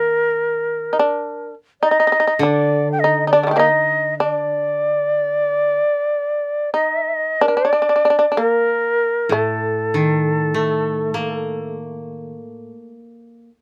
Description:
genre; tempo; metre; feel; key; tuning
japanese traditional, Japanese chamber music; 45-52 BPM; 2/4; rubato; unclear; A4 = 440 Hz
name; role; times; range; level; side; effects
reedy shakuhachi; melody; 0.0-11.7 s; A4 to G5; -20 LUFS; equal; none
shamisen; second line; 0.0-11.7 s; D3 to Eb4; -21 LUFS; equal; none
koto; accompaniment; 0.0-13.5 s; A2 to Bb3; -25 LUFS; equal; none
room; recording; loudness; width
light reverb; none; -18 LUFS; mono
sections
0.0-7.4 A section; 7.4-13.6 B section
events
none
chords
none

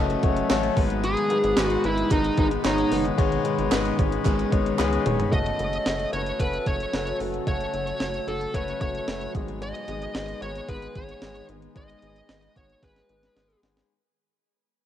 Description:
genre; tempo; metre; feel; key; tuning
1980s-style pop; 112 BPM; 4/4; straight; unclear; A4 = 435 Hz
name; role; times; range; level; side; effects
clear concert grand piano; accompaniment; 0.0-13.9 s; G#2 to B5; -28 LUFS; left 7 dB; cassette tape, shimmer reverb
overdriven semi-hollow guitar; accompaniment; 0.0-5.3 s; F#2 to G#3; -33 LUFS; right 8 dB; lush chorus, cassette tape, shimmer reverb
glassy FM pad; sustained chords; 0.0-13.9 s; B2 to G#4; -34 LUFS; equal; ensemble chorus, built-in reverb, cassette tape, shimmer reverb
rubbery square bass; bass; 0.0-13.8 s; E1 to C#2; -31 LUFS; right 1 dB; none
clean 12-bit digital drum machine; drums; 0.1-13.9 s; hi-hat, kick drum, snare drum, tambourine, toms; -26 LUFS; right 1 dB; cassette tape
group handclap; percussion; 0.5-4.9 s; none; -37 LUFS; right 12 dB; none
smooth overdriven lead guitar; melody; 1.0-13.6 s; D#4 to D#5; -29 LUFS; right 1 dB; cassette tape, shimmer reverb
room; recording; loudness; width
light reverb; home recording on cassette; -22 LUFS; side -10 dB against mid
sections
0.0-5.3 A section; 5.3-13.9 B section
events
grand piano fill 4.3-5.3; drum fill 4.8-5.3, 12.8-13.9; fade-out 5.3-13.9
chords
0.0 F#m; 0.8 G#m; 5.3 F#m; 9.3 G#m

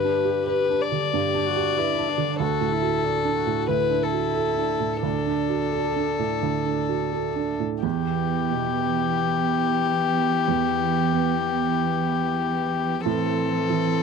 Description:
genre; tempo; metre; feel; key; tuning
neoclassical piano and strings; 85-96 BPM; 4/4; rubato; E minor; A4 = 441 Hz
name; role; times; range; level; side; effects
warm violin; melody; 0.0-14.0 s; G4 to D5; -24 LUFS; left 10 dB; none
dark viola; accompaniment; 0.0-14.0 s; B3 to G4; -30 LUFS; right 2 dB; none
felt-muted upright piano; accompaniment; 0.0-14.0 s; D2 to B4; -26 LUFS; right 12 dB; none
warm cello; second line; 7.8-14.0 s; E3; -29 LUFS; right 4 dB; none
room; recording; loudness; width
little or no reverb; dry, close 1970s-style studio recording; -21 LUFS; side -5 dB against mid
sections
0.0-7.8 A section; 7.8-14.0 A section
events
none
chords
0.0 G; 2.4 D; 7.8 Em; 13.1 Am

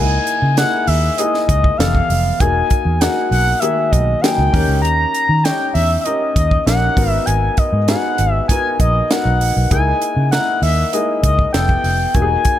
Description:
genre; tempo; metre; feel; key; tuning
polished 1980s jazz-funk pop; 98 BPM; 4/4; straight; C# dorian; A4 = 440 Hz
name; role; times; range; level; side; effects
expressive synth lead; melody; 0.0-12.6 s; D#5 to A#5; -18 LUFS; left 1 dB; chorus
warm grand piano; accompaniment; 0.0-12.6 s; D#3 to C#5; -22 LUFS; left 4 dB; lush chorus
vintage muted fingered electric bass; bass; 0.0-12.4 s; E1 to D#3; -17 LUFS; right 1 dB; none
tight funk drum kit; drums; 0.3-12.6 s; hi-hat, kick drum, snare drum; -19 LUFS; right 1 dB; none
room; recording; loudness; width
light reverb, studio reverb; none; -13 LUFS; side -12 dB against mid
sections
0.0-12.6 A section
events
none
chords
0.0 C#m69; 1.8 Fmaj9#11; 2.4 Emaj9#11; 4.5 D#7; 7.0 G#m9; 9.7 C#m69; 11.5 Fmaj9#11

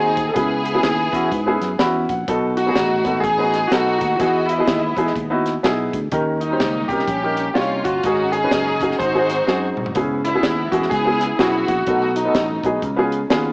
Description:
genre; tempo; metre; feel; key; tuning
uptempo gospel; 125 BPM; 4/4; swing 61% on 8ths; C# minor; A4 = 442 Hz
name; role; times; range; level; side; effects
clear grand piano; melody; 0.0-12.8 s; D#4 to B#4; -22 LUFS; equal; cassette tape
rich studio string section; melody; 0.0-12.8 s; F#3 to D#5; -22 LUFS; equal; cassette tape
clear baby grand piano; accompaniment; 0.0-13.5 s; G#2 to B5; -21 LUFS; equal; cassette tape
fingered electric bass; bass; 0.0-13.5 s; F#1 to G#2; -26 LUFS; equal; none
crisp fusion drum kit; drums; 0.2-13.4 s; hi-hat, kick drum, snare drum, toms; -24 LUFS; equal; none
room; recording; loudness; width
light reverb, studio reverb; home recording on cassette, small speaker sound; -16 LUFS; side -32 dB against mid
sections
0.0-13.5 A section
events
grand piano fill 1.6-2.3; drum fill 9.5-10.0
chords
0.4 C#m7; 2.3 B7; 4.2 Emaj7; 6.1 D#7; 8.0 G#7sus4; 9.0 G#7; 10.0 C#m7; 11.9 B7; 12.8 C#7

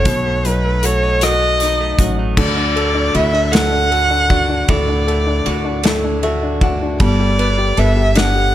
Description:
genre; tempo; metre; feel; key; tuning
six-eight pop ballad; 52 BPM (dotted quarters); 6/8; straight; D major; A4 = 437 Hz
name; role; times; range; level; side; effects
rich violin; melody; 0.0-8.5 s; B4 to F#5; -18 LUFS; right 1 dB; none
warm upright piano; accompaniment; 0.0-8.5 s; A2 to F#5; -21 LUFS; left 3 dB; none
direct-recorded clean electric guitar; arpeggios; 0.0-8.5 s; F#3 to A4; -25 LUFS; right 6 dB; phaser
upright bass; bass; 0.0-8.5 s; G1 to D2; -19 LUFS; equal; none
loose indie drum kit; drums; 0.1-8.3 s; crash cymbal, hi-hat, kick drum, ride cymbal, rim click, snare drum; -20 LUFS; equal; none
room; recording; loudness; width
light reverb, small room ambience; none; -13 LUFS; side -12 dB against mid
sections
0.0-2.4 A section; 2.4-8.5 B section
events
upright piano fill 5.8-7.0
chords
0.1 B7; 2.4 D; 7.0 Gadd9

